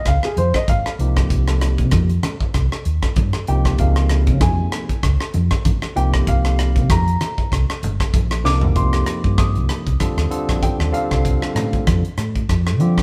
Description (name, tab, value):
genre	electric jazz fusion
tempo	96 BPM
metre	4/4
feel	swing 56% on 16ths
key	C minor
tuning	A4 = 437 Hz
part	dark baby grand piano	melody	0.0-11.8 s	Ab4 to Eb6	-28 LUFS	equal	none
part	hollow-body short-scale fingered electric bass	bass	0.1-13.0 s	G1 to F3	-21 LUFS	equal	none
part	crisp fusion drum kit	drums	0.1-13.0 s	hi-hat, kick drum, rim click, snare drum, toms	-23 LUFS	equal	none
part	congas	percussion	0.1-13.0 s	none	-29 LUFS	equal	none
part	barky tine electric piano	accompaniment	1.0-13.0 s	C3 to Bb4	-28 LUFS	equal	none
room	moderate stone room reverb, RT60 1.0 s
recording	band playing live in one room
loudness	-18 LUFS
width	mono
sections	0.0-8.8 A section; 8.8-13.0 A section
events	grand piano solo 0.0-13.0; drum fill 8.5-8.8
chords	0.0 Db; 1.0 Cm7; 3.8 Dbmaj9; 6.0 Cm7; 10.0 Ebmaj7; 10.9 F69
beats	0.06 0.69 | 1.31 1.93 2.55 3.17 | 3.79 4.41 5.04 5.66 | 6.28 6.90 7.52 8.14 | 8.76 9.39 10.01 10.63 | 11.25 11.87 12.49